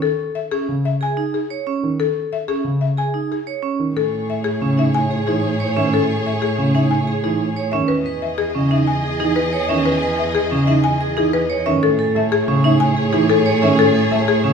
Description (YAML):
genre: classical, minimalist pattern music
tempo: 183 BPM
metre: 6/4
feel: straight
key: unclear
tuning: A4 = 440 Hz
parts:
  - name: buzzing marimba with hard mallets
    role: melody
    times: 0.0-14.5 s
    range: G#4 to G#5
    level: -21 LUFS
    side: left 7 dB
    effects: none
  - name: warm concert grand piano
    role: accompaniment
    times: 0.0-14.5 s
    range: C#3 to A3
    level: -22 LUFS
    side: left 1 dB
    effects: none
  - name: vibraphone with medium hard mallets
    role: arpeggios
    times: 0.5-14.5 s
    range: C#4 to C#5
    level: -22 LUFS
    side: right 7 dB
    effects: none
  - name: warm symphonic string section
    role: sustained chords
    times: 4.0-14.5 s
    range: G#4 to D#5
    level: -25 LUFS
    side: left 1 dB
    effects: none
  - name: warm cello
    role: bass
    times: 4.0-14.5 s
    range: E2 to A2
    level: -23 LUFS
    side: right 3 dB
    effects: none
room: wet recital hall reverb, RT60 1.4 s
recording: heard from further back in the room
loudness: -16 LUFS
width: side -6 dB against mid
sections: 0.0-4.0 A section; 4.0-14.5 B section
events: none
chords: 0.0 Amaj7 (rootless); 4.0 Amaj7; 7.9 Emaj7; 11.8 Amaj7